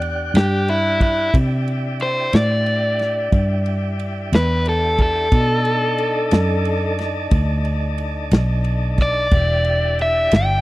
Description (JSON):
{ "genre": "slow blues", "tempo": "60 BPM (dotted quarters)", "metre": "12/8", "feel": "straight", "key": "E minor", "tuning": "A4 = 438 Hz", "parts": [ { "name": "overdriven electric guitar", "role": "melody", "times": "0.0-10.6 s", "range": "E4 to G5", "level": "-20 LUFS", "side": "equal", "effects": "spring reverb" }, { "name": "tonewheel organ", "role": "sustained chords", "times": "0.0-10.6 s", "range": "D4 to F#5", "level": "-27 LUFS", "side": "equal", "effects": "fast rotary speaker" }, { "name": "vintage muted fingered electric bass", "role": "bass", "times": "0.0-10.6 s", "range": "E1 to C3", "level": "-20 LUFS", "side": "equal", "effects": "none" }, { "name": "warm soul drum kit", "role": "drums", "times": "0.0-10.5 s", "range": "kick drum, ride cymbal, snare drum", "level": "-17 LUFS", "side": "equal", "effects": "none" } ], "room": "little or no reverb", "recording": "dry, close 1970s-style studio recording", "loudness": "-16 LUFS", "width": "side -18 dB against mid", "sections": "0.0-10.6 A section", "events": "overdriven electric guitar solo 0.0-10.6", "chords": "0.0 Em7; 1.3 C; 5.3 B7#9; 9.3 Em7", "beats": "0.34 | 1.34 2.33 3.33 4.33 | 5.33 6.33 7.33 8.32 | 9.32 10.32" }